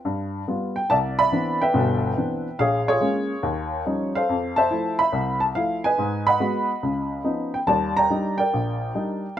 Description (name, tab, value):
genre	solo jazz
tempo	142 BPM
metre	4/4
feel	swing 68% on 8ths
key	unclear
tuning	A4 = 439 Hz
part	warm upright piano	solo	0.1-9.4 s	G1 to B5	-21 LUFS	equal	none
room	moderate small room reverb, RT60 0.5 s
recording	rough home demo mix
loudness	-20 LUFS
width	side -11 dB against mid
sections	0.9-9.4 A section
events	none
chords	0.0 G7; 0.9 Cmaj9; 2.6 Bbm7; 3.4 Eb9; 4.3 Fmaj7; 6.0 Abm7; 6.8 Db9; 7.7 Ebmaj7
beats	0.05 0.47 | 0.90 1.32 1.74 2.17 | 2.59 3.02 3.44 3.86 | 4.29 4.71 5.14 5.56 | 5.98 6.41 6.83 7.26 | 7.68 8.10 8.53 8.95 | 9.38